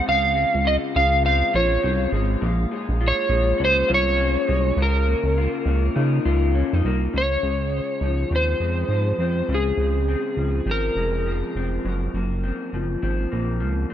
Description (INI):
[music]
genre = indie pop, bedroom pop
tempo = 102 BPM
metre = 4/4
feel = swing 60% on 16ths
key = Db major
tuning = A4 = 436 Hz
[part]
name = electric slide guitar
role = melody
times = 0.0-11.5 s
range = Ab4 to F5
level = -22 LUFS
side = right 1 dB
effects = analog chorus, tape echo
[part]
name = electric guitar through a small old amp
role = accompaniment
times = 0.0-13.9 s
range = Gb2 to F4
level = -27 LUFS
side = left 4 dB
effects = analog chorus, warbly pitch drift
[part]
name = chorused synth bass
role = bass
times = 0.1-13.9 s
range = F1 to Db3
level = -22 LUFS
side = right 1 dB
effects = none
[sound]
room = little or no reverb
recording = none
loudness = -19 LUFS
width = side -10 dB against mid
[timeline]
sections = 0.0-7.1 A section; 7.1-13.9 B section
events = none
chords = 0.0 Dbmaj7; 2.4 Bbm7; 4.8 Db69; 7.1 Dbmaj7; 11.9 Gbmaj9#11